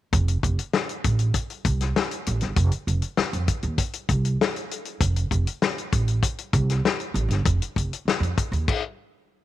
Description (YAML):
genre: funk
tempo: 98 BPM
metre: 4/4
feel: straight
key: F mixolydian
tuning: A4 = 442 Hz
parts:
  - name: upright bass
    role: bass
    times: 0.1-8.6 s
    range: F1 to F2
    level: -23 LUFS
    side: right 2 dB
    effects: none
  - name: warm soul drum kit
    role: drums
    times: 0.1-8.8 s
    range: crash cymbal, hi-hat, kick drum, snare drum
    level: -24 LUFS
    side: left 3 dB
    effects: none
room: light reverb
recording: 1960s-style stereo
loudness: -22 LUFS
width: side -14 dB against mid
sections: 0.1-9.4 A section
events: stop 8.7-9.4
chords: none